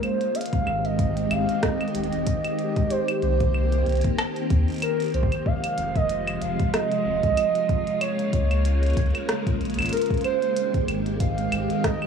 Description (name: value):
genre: IDM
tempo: 94 BPM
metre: 4/4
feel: swing 56% on 16ths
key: F minor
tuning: A4 = 440 Hz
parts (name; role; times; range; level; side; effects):
- warbly nostalgic lead; melody; 0.0-12.1 s; Bb4 to F5; -26 LUFS; right 3 dB; chorus, tremolo, digital delay
- soft string machine; sustained chords; 0.0-12.1 s; C3 to G4; -27 LUFS; equal; phaser, ensemble chorus
- glitchy drum kit; drums; 0.0-12.1 s; claves, hi-hat, rim click; -30 LUFS; right 1 dB; overdrive
- electronic kick drum; drums; 0.5-12.0 s; none; -25 LUFS; equal; overdrive
- warm sub bass; bass; 0.7-11.7 s; Eb1 to Eb2; -25 LUFS; left 1 dB; none
room: moderate lush hall reverb, RT60 2.4 s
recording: worn, warbling old tape, cassette tape, warbly pitch drift, small room ambience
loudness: -21 LUFS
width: side -6 dB against mid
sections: 0.0-12.1 A section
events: none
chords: 0.4 Abmaj7; 2.9 Cm7; 5.5 Fm; 8.0 Db6; 10.6 Abmaj7